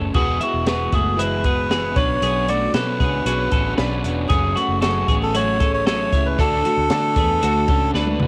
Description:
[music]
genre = jangly indie pop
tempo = 115 BPM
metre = 4/4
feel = straight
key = unclear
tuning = A4 = 441 Hz
[part]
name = crunchy overdriven guitar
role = accompaniment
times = 0.0-8.3 s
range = B2 to C#5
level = -29 LUFS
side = equal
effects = cassette tape
[part]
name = twelve-string electric guitar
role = arpeggios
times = 0.0-8.3 s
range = G#3 to C#5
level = -28 LUFS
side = equal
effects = cassette tape
[part]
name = vintage muted fingered electric bass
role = bass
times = 0.0-8.3 s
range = E1 to D3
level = -27 LUFS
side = equal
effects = none
[part]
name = melodica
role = melody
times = 0.1-7.9 s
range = F#4 to D5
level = -24 LUFS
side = equal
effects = none
[part]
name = compact cocktail drum kit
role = drums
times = 0.1-8.3 s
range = crash cymbal, hi-hat, kick drum, snare drum, toms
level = -25 LUFS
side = equal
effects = none
[part]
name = chorused retro synth keys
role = accompaniment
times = 0.2-8.3 s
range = A3 to B4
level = -34 LUFS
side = equal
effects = none
[sound]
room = small room ambience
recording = home recording on cassette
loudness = -19 LUFS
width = mono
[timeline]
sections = 0.2-8.3 A section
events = drum fill 7.9-8.3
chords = 0.2 Eadd9; 2.0 Bmadd9; 4.3 F#madd9; 6.4 D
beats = | 0.15 0.67 1.19 1.71 | 2.23 2.75 3.27 3.79 | 4.31 4.83 5.35 5.87 | 6.39 6.91 7.43 7.95

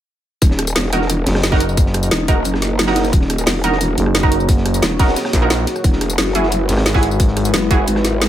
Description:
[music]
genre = dark technical drum and bass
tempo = 177 BPM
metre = 4/4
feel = straight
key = Eb phrygian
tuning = A4 = 440 Hz
[part]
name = dark analog pad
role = sustained chords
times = 1.1-8.3 s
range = G#3 to Eb5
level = -23 LUFS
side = equal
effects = chorus, sidechain pumping
[part]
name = growl bass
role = bass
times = 0.4-8.3 s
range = Eb1 to G#1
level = -19 LUFS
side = equal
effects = chorus, overdrive
[part]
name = crunchy breakbeat drum kit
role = drums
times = 0.4-8.3 s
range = hi-hat, snare drum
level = -27 LUFS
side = equal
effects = none
[part]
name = drum and bass drum kit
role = drums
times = 0.4-8.3 s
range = hi-hat, rim click, snare drum, tambourine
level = -20 LUFS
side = equal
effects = none
[part]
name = electronic kick drum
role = drums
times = 0.4-7.8 s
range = none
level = -14 LUFS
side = equal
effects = none
[part]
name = orchestra-hit-like synth stab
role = stabs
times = 0.9-7.8 s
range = Eb4 to Bb4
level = -22 LUFS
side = right 3 dB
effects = built-in reverb, digital delay
[part]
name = growling FM bass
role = bass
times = 1.3-7.5 s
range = Gb1 to Bb1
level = -18 LUFS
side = equal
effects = none
[sound]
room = digital ambience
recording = none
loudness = -13 LUFS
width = side -12 dB against mid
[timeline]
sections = 0.4-8.3 A section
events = drop 0.4-8.3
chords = 0.4 Ebm; 5.8 Eadd9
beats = | 0.42 0.76 1.10 1.44 | 1.77 2.11 2.45 2.79 | 3.13 3.47 3.81 4.15 | 4.49 4.83 5.16 5.50 | 5.84 6.18 6.52 6.86 | 7.20 7.54 7.88 8.21

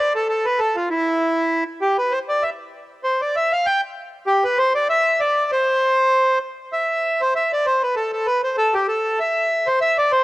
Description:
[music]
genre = celtic folk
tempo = 196 BPM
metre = 4/4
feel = swing 54% on 8ths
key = unclear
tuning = A4 = 442 Hz
[part]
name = accordion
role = solo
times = 0.0-10.2 s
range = E4 to G5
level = -17 LUFS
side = equal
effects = cassette tape
[sound]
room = light reverb, small room ambience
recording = home recording on cassette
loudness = -17 LUFS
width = side -18 dB against mid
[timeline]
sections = 0.0-6.7 A section; 6.7-10.2 B section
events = none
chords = none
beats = 0.29 | 0.59 0.90 1.20 1.51 | 1.82 2.12 2.43 2.73 | 3.04 3.35 3.65 3.96 | 4.27 4.57 4.88 5.19 | 5.49 5.80 6.11 6.42 | 6.72 7.03 7.34 7.64 | 7.95 8.26 8.57 8.87 | 9.18 9.49 9.80 10.10

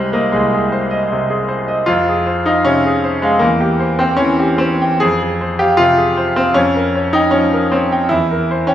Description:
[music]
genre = classical, romantic character piece for solo piano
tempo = 78 BPM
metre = 4/4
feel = rubato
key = F minor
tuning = A4 = 441 Hz
[part]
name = bright concert grand piano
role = solo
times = 0.0-8.7 s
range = C2 to G5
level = -12 LUFS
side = equal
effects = none
[sound]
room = wet recital hall reverb, RT60 1.4 s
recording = minimal, uncompressed stereo recording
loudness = -12 LUFS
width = side -11 dB against mid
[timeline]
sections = 0.0-8.7 A section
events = none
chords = 0.0 Ab/C; 1.9 Fm; 3.4 C/E; 5.0 Fm; 6.6 Gm7b5/F; 8.1 C7/E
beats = 0.34 1.12 | 1.90 2.67 3.43 4.20 | 5.02 5.80 6.57 7.35 | 8.12

